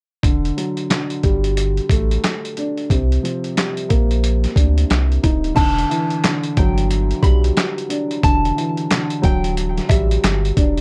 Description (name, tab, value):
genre	hip hop, boom-bap hip-hop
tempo	90 BPM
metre	4/4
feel	swing 60% on 16ths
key	E minor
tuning	A4 = 440 Hz
part	dark upright piano	accompaniment	0.2-10.8 s	C3 to Eb4	-24 LUFS	equal	cassette tape
part	saturated sub bass	bass	0.2-10.8 s	D1 to D2	-21 LUFS	equal	none
part	dusty soul sampler-style drum kit	drums	0.2-10.8 s	crash cymbal, handclaps, hi-hat, kick drum, snare drum	-21 LUFS	equal	overdrive
part	nylon-string guitar	melody	5.6-10.1 s	E5 to B5	-26 LUFS	equal	tape echo
room	little or no reverb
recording	worn, warbling old tape, cassette tape, warbly pitch drift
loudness	-18 LUFS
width	mono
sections	0.2-5.6 A section; 5.6-10.8 B section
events	none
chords	0.2 Em11 (rootless); 2.9 Cm11; 5.6 Em9